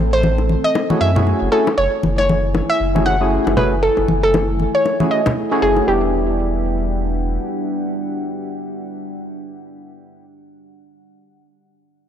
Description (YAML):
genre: deep house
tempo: 117 BPM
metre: 4/4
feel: swing 59% on 16ths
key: E minor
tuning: A4 = 440 Hz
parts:
  - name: deep dark ambient pad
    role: sustained chords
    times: 0.0-10.3 s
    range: G3 to G#5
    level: -25 LUFS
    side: equal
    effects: chorus, built-in reverb
  - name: warm sub bass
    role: bass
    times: 0.0-7.4 s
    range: E1 to F#2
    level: -20 LUFS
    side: equal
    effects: none
  - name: soft round pluck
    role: melody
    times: 0.1-10.3 s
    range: G4 to F#5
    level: -19 LUFS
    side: equal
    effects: chorus, tape echo
  - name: congas and bongos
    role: percussion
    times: 0.2-5.9 s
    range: none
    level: -21 LUFS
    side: left 2 dB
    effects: none
  - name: percussive organ stab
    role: stabs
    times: 0.9-10.3 s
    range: G3 to G#4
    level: -22 LUFS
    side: equal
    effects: analog chorus, tape echo
room: light reverb, digital ambience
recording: dry, gritty hardware recording, transformer saturation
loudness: -15 LUFS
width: side -9 dB against mid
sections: 0.0-5.9 A section; 5.9-10.0 B section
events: drop 0.0-5.9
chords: 0.0 Am; 0.8 F#m9; 5.9 Em9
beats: 0.24 0.75 1.26 | 1.78 2.29 2.80 3.31 | 3.83 4.34 4.85 5.37 | 5.88 6.39 6.90 7.42 | 7.93 8.44 8.96 9.47